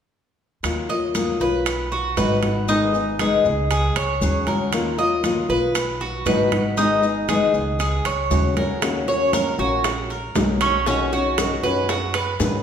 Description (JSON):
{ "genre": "latin, Cuban son and guajira", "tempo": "117 BPM", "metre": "4/4", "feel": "straight", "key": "Eb minor", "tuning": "A4 = 440 Hz", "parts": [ { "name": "fingerpicked old ladder-braced acoustic guitar", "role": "accompaniment", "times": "0.6-12.6 s", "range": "B2 to Ab4", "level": "-22 LUFS", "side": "left 4 dB", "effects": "none" }, { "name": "upright bass", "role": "bass", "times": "0.6-12.6 s", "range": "Ab1 to Ab2", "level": "-27 LUFS", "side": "right 1 dB", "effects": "none" }, { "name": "congas", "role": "percussion", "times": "0.6-12.6 s", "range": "none", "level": "-29 LUFS", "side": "left 1 dB", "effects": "none" }, { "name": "maracas", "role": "percussion", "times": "0.6-12.6 s", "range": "none", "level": "-36 LUFS", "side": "left 3 dB", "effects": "none" }, { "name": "timbales", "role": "percussion", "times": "0.6-12.4 s", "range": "none", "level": "-29 LUFS", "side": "right 6 dB", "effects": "none" }, { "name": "Cuban tres", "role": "arpeggios", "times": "0.9-12.6 s", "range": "Db4 to Eb5", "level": "-23 LUFS", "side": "right 3 dB", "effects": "none" }, { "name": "bongos", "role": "percussion", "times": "8.8-12.6 s", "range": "none", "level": "-29 LUFS", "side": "left 3 dB", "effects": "none" } ], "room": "wet recital hall reverb, RT60 1.5 s", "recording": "recorded in a church or concert hall", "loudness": "-18 LUFS", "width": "side -8 dB against mid", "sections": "0.6-8.8 A section; 8.8-12.6 B section", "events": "none", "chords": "0.6 Ebmadd9; 1.7 B; 2.7 Abm; 3.7 Dbsus4; 4.7 Ebmadd9; 5.8 B; 6.8 Abm; 7.8 Dbsus4; 8.8 Ebm7; 10.9 Badd9" }